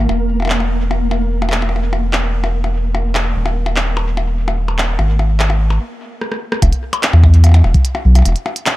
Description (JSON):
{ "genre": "IDM", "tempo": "147 BPM", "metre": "4/4", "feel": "straight", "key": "E lydian", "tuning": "A4 = 442 Hz", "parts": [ { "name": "round analog bass", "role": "bass", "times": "0.0-8.3 s", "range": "D#1 to E2", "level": "-13 LUFS", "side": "equal", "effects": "none" }, { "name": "flickering grainy texture", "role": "texture", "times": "0.0-5.8 s", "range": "A#3 to A#4", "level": "-25 LUFS", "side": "equal", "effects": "built-in reverb" }, { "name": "glitchy drum kit", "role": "drums", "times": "0.1-8.7 s", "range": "handclaps, hi-hat, percussion blips, rim click", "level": "-20 LUFS", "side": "left 1 dB", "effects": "overdrive" }, { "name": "electronic kick drum", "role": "drums", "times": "6.6-7.8 s", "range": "none", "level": "-14 LUFS", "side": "equal", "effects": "overdrive" } ], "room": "little or no reverb", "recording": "none", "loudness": "-12 LUFS", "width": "side -17 dB against mid", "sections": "0.0-6.6 A section; 6.6-8.8 B section", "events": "stop 5.8-6.6; drum fill 6.2-6.6", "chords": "0.1 N.C.; 3.4 D#5; 5.0 G#sus2; 5.8 N.C.; 6.6 E5" }